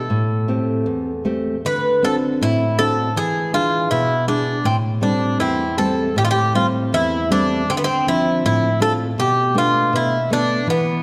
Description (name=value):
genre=fado-style ballad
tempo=80 BPM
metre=2/4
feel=rubato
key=A minor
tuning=A4 = 438 Hz
part: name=Greek bouzouki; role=melody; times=0.0-11.0 s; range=B3 to B4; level=-22 LUFS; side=equal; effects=none
part: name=nylon-string guitar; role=accompaniment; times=0.0-11.0 s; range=E2 to E5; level=-22 LUFS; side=equal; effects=none
room=moderate concert hall reverb, RT60 1.7 s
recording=dark, warm production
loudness=-19 LUFS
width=mono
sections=0.0-6.2 A section; 6.2-11.0 A section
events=none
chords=0.1 Am7; 1.6 D7; 3.2 E7; 4.6 Am7; 7.7 Dm7; 9.2 Bm7b5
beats=| 0.10 0.87 | 1.64 2.41 | 3.16 3.89 | 4.63 5.39 | 6.16 6.93 | 7.69 8.44 | 9.18 9.94 | 10.68